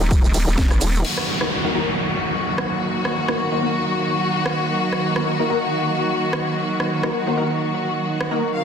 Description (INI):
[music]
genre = bass house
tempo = 128 BPM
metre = 4/4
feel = swing 55% on 16ths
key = Eb dorian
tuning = A4 = 440 Hz
[part]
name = rich studio string section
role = sustained chords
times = 0.0-8.6 s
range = Eb3 to F5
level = -22 LUFS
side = equal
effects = sidechain pumping, low-pass filter
[part]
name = vowel-sweep wobble bass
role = bass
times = 0.0-1.0 s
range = Eb1 to Gb1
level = -19 LUFS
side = equal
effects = chorus, tube saturation, sidechain pumping
[part]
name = maracas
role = percussion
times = 0.0-1.0 s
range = none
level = -31 LUFS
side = right 5 dB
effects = none
[part]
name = electronic kick drum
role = drums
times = 0.1-0.7 s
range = none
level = -18 LUFS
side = equal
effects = overdrive
[part]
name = house drum kit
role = drums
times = 0.1-8.3 s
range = crash cymbal, hi-hat, ride cymbal, rim click, snare drum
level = -27 LUFS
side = equal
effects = overdrive
[part]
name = downlifter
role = sound effects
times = 1.0-4.8 s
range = none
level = -26 LUFS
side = equal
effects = none
[part]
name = orchestra-hit-like synth stab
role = stabs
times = 1.4-8.6 s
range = Bb3 to C5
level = -24 LUFS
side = left 2 dB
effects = built-in reverb, phaser, sidechain pumping, digital delay
[sound]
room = moderate plate reverb, RT60 1.2 s, digital ambience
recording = dense, heavily limited modern master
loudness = -18 LUFS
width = side -7 dB against mid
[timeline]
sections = 0.0-1.0 A section; 1.0-8.6 B section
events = drop 0.0-1.0; filter sweep on synth stab 1.0-8.6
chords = 0.0 Ebm